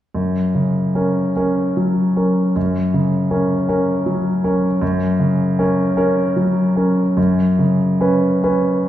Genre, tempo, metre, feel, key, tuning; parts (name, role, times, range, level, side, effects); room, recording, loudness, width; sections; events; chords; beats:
classical, romantic nocturne for solo piano; 42-54 BPM (dotted quarters); 6/8; rubato; F# major; A4 = 439 Hz
clear concert grand piano; solo; 0.1-8.9 s; F#2 to B4; -15 LUFS; equal
wet recital hall reverb, RT60 1.8 s; heard from further back in the room; -15 LUFS; side -12 dB against mid
0.1-8.9 A section
0.1 F#; 7.2 C#7(no3)/F#
| 0.14 1.36 | 2.56 3.69 | 4.82 5.97 | 7.17 8.44